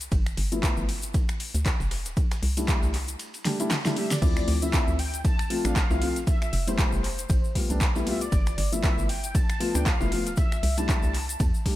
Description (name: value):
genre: deep house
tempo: 117 BPM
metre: 4/4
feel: swing 57% on 16ths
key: D dorian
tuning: A4 = 441 Hz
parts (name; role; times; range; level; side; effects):
- hollow knocking FM bass; bass; 0.0-11.5 s; D1 to E2; -29 LUFS; equal; sidechain pumping
- deep house drum kit; drums; 0.0-11.8 s; crash cymbal, finger snaps, handclaps, hi-hat, snare drum; -31 LUFS; equal; overdrive
- tube shaker; percussion; 0.0-11.6 s; none; -38 LUFS; left 3 dB; none
- breakbeat sampler-style drum kit; drums; 0.1-11.8 s; hi-hat, ride cymbal, snare drum; -42 LUFS; right 2 dB; sidechain pumping on cymbals, high-pass filter on cymbals, high-pass filter on snare, sidechain pumping on hats, high-pass filter on hats, high-pass filter on room
- electronic kick drum; drums; 0.1-11.8 s; none; -25 LUFS; equal; overdrive
- felt-muted upright piano; stabs; 0.5-11.8 s; F3 to G4; -30 LUFS; left 2 dB; sidechain pumping, tape echo
- mellow horn-like synth lead; melody; 4.0-11.8 s; C5 to A5; -35 LUFS; equal; ensemble chorus, tape echo
room: digital ambience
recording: none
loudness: -23 LUFS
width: side -15 dB against mid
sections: 0.0-4.2 A section; 4.2-11.8 B section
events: drum fill 3.5-4.2; drop 4.2-11.8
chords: 0.1 G13; 2.2 C6; 4.2 Dm9; 6.3 Fmaj9#11; 8.3 G13; 10.4 C6